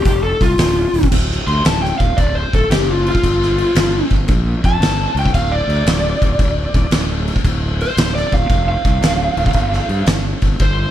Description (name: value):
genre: blues rock power trio and southern rock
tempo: 114 BPM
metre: 4/4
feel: swing 67% on 8ths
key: D minor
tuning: A4 = 439 Hz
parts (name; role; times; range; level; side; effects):
- overdriven slide guitar; melody; 0.0-10.9 s; F4 to C6; -19 LUFS; left 1 dB; slapback echo
- fuzz fingered electric bass; bass; 0.1-10.9 s; D1 to G2; -19 LUFS; equal; overdrive
- oversized low-tuned drum kit; drums; 0.1-10.8 s; crash cymbal, hi-hat, kick drum, snare drum; -17 LUFS; equal; none
room: little or no reverb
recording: none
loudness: -13 LUFS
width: side -11 dB against mid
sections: 0.0-1.1 A section; 1.1-10.9 A section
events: electric slide guitar solo 0.0-10.9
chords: 0.0 Dm7; 1.1 D(#9); 3.2 Gm9; 5.3 Dm; 9.6 G7(no3)